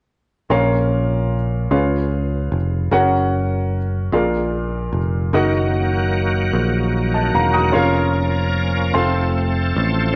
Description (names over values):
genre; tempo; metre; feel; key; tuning
gospel; 50 BPM (dotted quarters); 6/8; straight; Bb harmonic minor; A4 = 443 Hz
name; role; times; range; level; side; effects
warm upright piano; accompaniment; 0.5-10.2 s; Bb2 to Eb6; -22 LUFS; equal; none
picked electric bass; bass; 0.5-10.1 s; E1 to Db2; -22 LUFS; equal; none
bright tonewheel organ; sustained chords; 5.3-10.2 s; Eb3 to Bb4; -24 LUFS; equal; slow rotary speaker, overdrive, chorus vibrato
room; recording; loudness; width
moderate echo chamber reverb, RT60 1.7 s, small room ambience; none; -19 LUFS; mono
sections
0.5-10.2 A section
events
none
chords
0.5 Bbm; 1.7 Db7; 2.9 Gb; 4.1 Bb7; 5.3 Ebm/Gb; 7.7 Bbm/F; 9.0 F